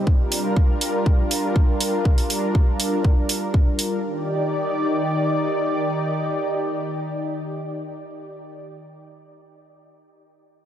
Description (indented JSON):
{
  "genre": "progressive house",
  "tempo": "121 BPM",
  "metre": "4/4",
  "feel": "straight",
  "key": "Eb major",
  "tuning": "A4 = 440 Hz",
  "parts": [
    { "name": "lush unison pad", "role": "sustained chords", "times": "0.0-8.6 s", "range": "Eb3 to D5", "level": "-23 LUFS", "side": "equal", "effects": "chorus, sidechain pumping" },
    { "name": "electronic kick drum", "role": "drums", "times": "0.1-3.6 s", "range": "none", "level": "-17 LUFS", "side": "equal", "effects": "none" },
    { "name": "electronic hi-hat", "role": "drums", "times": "0.3-3.9 s", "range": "none", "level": "-24 LUFS", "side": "right 2 dB", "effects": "overdrive, sidechain pumping on hats" }
  ],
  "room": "light reverb, digital ambience",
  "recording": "none",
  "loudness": "-19 LUFS",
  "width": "side -10 dB against mid",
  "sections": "0.0-4.0 A section; 4.0-8.0 B section",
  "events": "none",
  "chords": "0.1 Gm7; 4.0 Ebmaj7",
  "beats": "| 0.07 0.56 1.06 1.56 | 2.05 2.55 3.04 3.54 | 4.04 4.53 5.03 5.52 | 6.02 6.52 7.01 7.51"
}